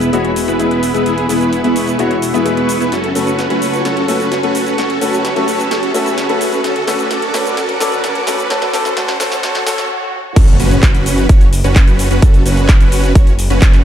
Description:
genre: EDM, festival progressive house.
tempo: 129 BPM.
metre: 4/4.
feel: straight.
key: F# minor.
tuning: A4 = 441 Hz.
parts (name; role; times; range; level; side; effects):
warm concert grand piano; accompaniment; 0.0-9.8 s; G#3 to B4; -19 LUFS; left 4 dB; sidechain pumping, ping-pong delay.
lush unison pad; sustained chords; 0.0-9.9 s; G#4 to D6; -23 LUFS; right 1 dB; chorus, phaser, sidechain pumping.
dense compressed supersaw; riff; 0.0-13.8 s; B3 to C#5; -17 LUFS; right 1 dB; sidechain pumping, low-pass filter, ping-pong delay.
wide detuned saw bass; bass; 0.0-13.8 s; E1 to D2; -21 LUFS; equal; chorus, sidechain pumping.
big-room dance drum kit; drums; 0.0-13.8 s; crash cymbal, handclaps, hi-hat, shaker, snare drum; -22 LUFS; equal; high-pass filter on hats, high-pass filter on perc, high-pass filter on snare, high-pass filter on cymbals.
riser, swell and impact; sound effects; 0.4-12.2 s; none; -24 LUFS; right 1 dB; none.
electronic kick drum; drums; 10.4-13.7 s; none; -8 LUFS; equal; none.
room: moderate lush hall reverb, RT60 2.0 s.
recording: dark, warm production, high-pass filter.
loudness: -11 LUFS.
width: side -10 dB against mid.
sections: 0.0-10.4 A section; 10.4-13.8 B section.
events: build-up 0.0-10.4; filter sweep on supersaw synth 0.0-10.4; filter sweep 0.0-10.4; riser 0.4-9.9; drum fill 2.9-9.9; swell 9.4-10.4; stop 9.9-10.4; drop 10.4-13.8; impact 10.4-12.2.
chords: 0.0 E; 2.9 F#m; 6.6 D; 10.4 F#m.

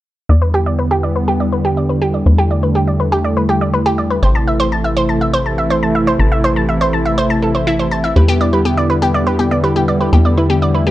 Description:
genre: techno.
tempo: 122 BPM.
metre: 4/4.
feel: straight.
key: E minor.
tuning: A4 = 440 Hz.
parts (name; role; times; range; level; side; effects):
warm analog pad; sustained chords; 0.3-10.9 s; C3 to E4; -17 LUFS; equal; chorus, tremolo.
analog pluck; arpeggios; 0.3-10.9 s; E4 to A5; -17 LUFS; right 1 dB; chorus, tape echo.
tight sequencer bass; bass; 0.3-10.9 s; A1 to E2; -17 LUFS; equal; none.
wide unison lead; melody; 8.2-10.9 s; B3 to G4; -19 LUFS; left 1 dB; tape echo.
room: light reverb.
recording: dry, gritty hardware recording.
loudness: -12 LUFS.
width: side -15 dB against mid.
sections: 0.3-10.9 A section.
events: filter sweep on synth pluck 0.3-10.9; filter sweep on analog synth pad 0.3-10.9.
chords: 0.3 Em7; 4.2 Am; 8.2 Em7.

